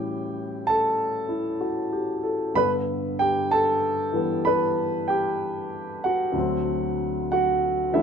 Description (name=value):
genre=solo jazz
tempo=63 BPM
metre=4/4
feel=swing 66% on 8ths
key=unclear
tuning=A4 = 440 Hz
part: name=dark grand piano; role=solo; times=0.0-8.0 s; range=D2 to B5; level=-22 LUFS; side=equal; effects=none
room=light reverb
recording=none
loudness=-22 LUFS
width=side -7 dB against mid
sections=0.0-8.0 A section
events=none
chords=0.0 A7; 2.6 G; 6.4 D7